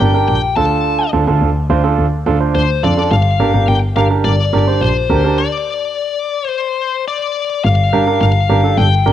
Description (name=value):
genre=synth-pop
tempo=106 BPM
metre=4/4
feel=straight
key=G minor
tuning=A4 = 438 Hz
part: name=high-gain lead guitar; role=melody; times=0.0-9.1 s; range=C5 to A5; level=-18 LUFS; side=left 8 dB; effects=distortion, cassette tape, analog delay
part: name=warm concert grand piano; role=accompaniment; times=0.0-9.1 s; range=D4 to C5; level=-17 LUFS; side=right 7 dB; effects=cassette tape
part: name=warm double bass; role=bass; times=0.0-9.1 s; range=G1 to G2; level=-14 LUFS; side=equal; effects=none
room=moderate spring reverb, RT60 1.9 s, studio reverb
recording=home recording on cassette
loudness=-12 LUFS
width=side -11 dB against mid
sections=0.0-7.6 A section; 7.6-9.1 B section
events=stop 5.4-7.6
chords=0.0 Gm; 0.6 Dm; 3.1 Gm7; 5.4 N.C.; 7.6 Gm7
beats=0.28 | 0.85 1.42 1.98 2.55 | 3.12 3.68 4.25 4.81 | 5.38 5.95 6.51 7.08 | 7.64 8.21 8.78